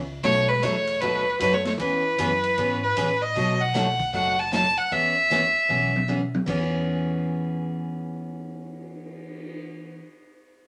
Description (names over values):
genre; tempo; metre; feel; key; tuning
country, western swing; 154 BPM; 4/4; swing 64% on 8ths; E major; A4 = 440 Hz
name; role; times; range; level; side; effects
upright bass; bass; 0.0-9.9 s; F#1 to A2; -35 LUFS; equal; none
clear fiddle; melody; 0.2-6.1 s; B4 to A5; -24 LUFS; equal; none
hollow-body jazz guitar; second line; 0.2-2.9 s; E3 to A3; -35 LUFS; equal; none
picked steel-string acoustic guitar; accompaniment; 0.2-10.0 s; B2 to G#4; -31 LUFS; equal; none
swinging big-band drum kit; drums; 0.2-9.5 s; crash cymbal, cymbal swell, hi-hat, kick drum, ride cymbal, snare drum, toms; -37 LUFS; equal; none
room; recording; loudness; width
wet studio reverb, RT60 0.5 s; none; -23 LUFS; mono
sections
0.0-3.4 A section; 3.4-6.5 B section; 6.5-9.6 C section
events
drum fill 5.7-6.5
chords
0.2 B7; 1.8 E6; 3.4 B7; 4.9 E6